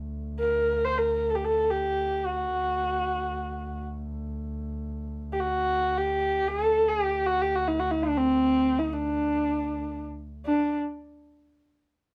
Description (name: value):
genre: Persian modal ensemble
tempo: free time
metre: none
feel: none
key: D dastgah homayun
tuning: A4 = 440 Hz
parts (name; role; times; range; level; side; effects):
- muted double bass; drone; 0.0-10.5 s; D2; -38 LUFS; equal; none
- dark kamancheh; melody; 0.4-10.8 s; C4 to C5; -27 LUFS; equal; none
room: moderate small room reverb, RT60 0.5 s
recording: none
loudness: -27 LUFS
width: mono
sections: 0.0-10.5 A section; 10.5-12.1 B section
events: none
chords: none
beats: free time